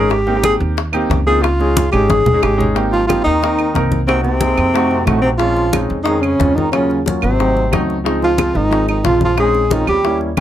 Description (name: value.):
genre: Afro-Cuban jazz.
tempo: 181 BPM.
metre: 4/4.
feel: straight.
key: Ab major.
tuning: A4 = 440 Hz.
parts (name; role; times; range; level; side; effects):
breathy tenor saxophone; melody; 0.0-10.2 s; A3 to Ab4; -16 LUFS; equal; none.
warm grand piano; accompaniment; 0.0-10.4 s; F3 to Bb4; -19 LUFS; equal; none.
upright bass; bass; 0.0-10.4 s; G1 to F2; -19 LUFS; equal; none.
bongos; percussion; 0.1-10.4 s; none; -25 LUFS; left 9 dB; none.
congas; percussion; 0.1-10.4 s; none; -21 LUFS; left 2 dB; none.
claves; percussion; 0.4-10.4 s; none; -26 LUFS; right 7 dB; none.
trombone with metal mute; second line; 2.9-10.2 s; A2 to Ab3; -23 LUFS; right 1 dB; none.
room: light reverb.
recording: none.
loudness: -13 LUFS.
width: side -11 dB against mid.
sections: 0.0-2.8 A section; 2.8-10.4 B section.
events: tenor saxophone solo 0.0-2.8; drum fill 1.8-2.8.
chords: 0.1 Abmaj7; 1.4 Dbsus2; 2.8 Abmaj7; 4.1 Cm7b5; 4.7 F7b9; 5.4 Bbm9; 6.7 Ebm9; 7.4 Ab7b9; 8.1 Dbmaj9; 9.4 Bbm11.